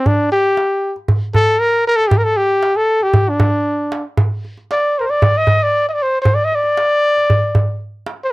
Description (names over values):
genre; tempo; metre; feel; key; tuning
Arabic maqam ensemble; 116 BPM; 4/4; straight; D maqam hijaz; A4 = 440 Hz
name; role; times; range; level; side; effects
warm trumpet; melody; 0.0-8.3 s; D4 to Eb5+26c; -14 LUFS; equal; none
darbuka; percussion; 0.1-8.2 s; none; -16 LUFS; right 1 dB; none
room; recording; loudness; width
light reverb; dry, close 1970s-style studio recording; -13 LUFS; side -20 dB against mid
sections
0.0-8.3 A section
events
none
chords
none